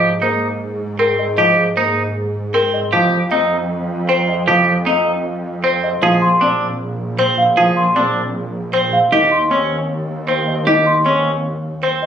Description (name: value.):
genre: classical, minimalist pattern music.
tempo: 155 BPM.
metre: 4/4.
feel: straight.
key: Ab major.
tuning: A4 = 440 Hz.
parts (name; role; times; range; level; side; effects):
marimba with medium mallets; melody; 0.0-12.1 s; Bb4 to F5; -20 LUFS; left 4 dB; none.
warm grand piano; accompaniment; 0.0-11.3 s; Eb3 to C4; -20 LUFS; right 2 dB; none.
twangy electric guitar; arpeggios; 0.0-12.1 s; C4 to Ab4; -18 LUFS; right 3 dB; none.
clear chamber double bass section; bass; 0.0-12.1 s; Bb1 to Ab2; -23 LUFS; right 1 dB; none.
large celesta; arpeggios; 1.2-12.1 s; Eb5 to C6; -18 LUFS; equal; none.
room: light reverb.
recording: recorded on a phone in the room, club reverb.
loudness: -14 LUFS.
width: side -8 dB against mid.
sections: 0.0-12.1 A section.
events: none.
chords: 0.0 Abadd9; 2.9 F5; 6.0 Bb7; 9.1 Eb7.